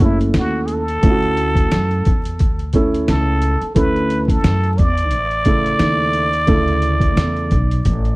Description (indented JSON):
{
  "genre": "hip hop, jazz-hop",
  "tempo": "88 BPM",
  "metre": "4/4",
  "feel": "swing 58% on 16ths",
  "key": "D major",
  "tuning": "A4 = 440 Hz",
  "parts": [
    { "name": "trumpet with plunger mute", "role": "melody", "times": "0.0-8.2 s", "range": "E4 to D5", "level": "-20 LUFS", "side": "equal", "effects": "none" },
    { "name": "dark upright piano", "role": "accompaniment", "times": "0.0-7.5 s", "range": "C#3 to A4", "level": "-20 LUFS", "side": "right 1 dB", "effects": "none" },
    { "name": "upright bass", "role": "bass", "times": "0.0-8.2 s", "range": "F#1 to F#2", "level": "-19 LUFS", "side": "equal", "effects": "none" },
    { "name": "trip hop sampler-style drum kit", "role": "drums", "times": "0.0-8.2 s", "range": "hi-hat, kick drum, snare drum", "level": "-18 LUFS", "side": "equal", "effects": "none" }
  ],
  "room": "small room ambience",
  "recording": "dry, close 1970s-style studio recording, vinyl crackle",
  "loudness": "-14 LUFS",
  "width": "side -22 dB against mid",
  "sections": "0.0-8.2 A section",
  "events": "none",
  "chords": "0.0 Dmaj9"
}